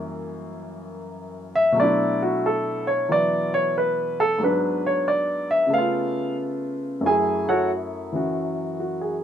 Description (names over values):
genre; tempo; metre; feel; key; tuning
solo jazz; 91 BPM; 4/4; swing 66% on 8ths; unclear; A4 = 438 Hz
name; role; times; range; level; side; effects
warm upright piano; solo; 0.0-9.2 s; F#2 to G#5; -21 LUFS; equal; none
room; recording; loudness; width
light reverb; minimal, uncompressed stereo recording; -20 LUFS; side -9 dB against mid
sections
0.0-9.2 A section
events
upright piano solo 0.0-9.2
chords
0.0 F#7b9; 1.8 Bm7; 4.4 G#m7b5; 5.7 C#aug7; 7.0 F#m7